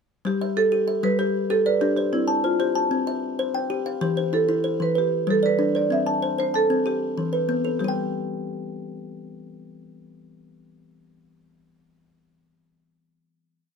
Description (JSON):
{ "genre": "southern african traditional, mbira-style interlocking cycle", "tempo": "127 BPM (dotted quarters)", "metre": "12/8", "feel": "straight", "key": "G major", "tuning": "A4 = 441 Hz", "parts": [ { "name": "kalimba", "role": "arpeggios", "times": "0.2-11.7 s", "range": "E3 to A5", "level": "-24 LUFS", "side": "left 2 dB", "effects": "none" }, { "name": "marimba with medium mallets", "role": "melody", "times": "0.3-11.6 s", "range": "E4 to E5", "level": "-24 LUFS", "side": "right 2 dB", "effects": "none" } ], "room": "light reverb", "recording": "close, detailed microphones", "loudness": "-21 LUFS", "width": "side -6 dB against mid", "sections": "0.2-7.8 A section; 7.8-11.6 final note", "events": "none", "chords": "0.2 G; 2.1 C; 4.0 Em; 5.0 G; 5.9 C; 6.9 Em; 7.8 N.C." }